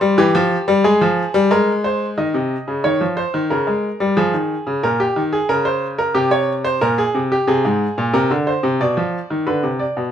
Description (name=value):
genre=classical, baroque-style two-part invention for grand piano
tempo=91 BPM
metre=4/4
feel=straight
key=unclear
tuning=A4 = 440 Hz
part: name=bright grand piano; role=solo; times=0.0-10.1 s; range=Ab2 to Eb5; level=-15 LUFS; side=equal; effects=none
room=light reverb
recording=none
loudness=-15 LUFS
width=side -9 dB against mid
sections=0.0-2.2 A section; 2.2-10.1 B section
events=none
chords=0.0 C/E; 0.8 Fm; 2.2 Cmadd11; 3.5 Db; 4.8 Gdim/Bb; 6.1 C5; 7.5 Abadd9; 8.8 Bdim